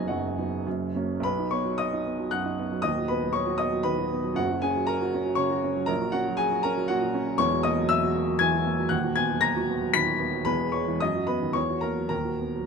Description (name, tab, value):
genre	classical, romantic character piece for solo piano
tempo	101-121 BPM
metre	3/4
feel	rubato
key	B major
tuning	A4 = 440 Hz
part	warm baby grand piano	solo	0.0-12.7 s	D#1 to B6	-24 LUFS	equal	none
room	light reverb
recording	close, detailed microphones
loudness	-24 LUFS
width	side -5 dB against mid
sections	0.0-1.2 A section; 1.2-12.7 B section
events	none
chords	0.0 B/F#; 0.7 F#; 1.2 B; 2.8 B/D#; 4.4 F#; 5.9 F#/A#; 7.4 F#7/E; 8.9 B/D#; 10.5 C#m/E; 11.0 B/F#; 11.6 F#7/E; 12.1 B/D#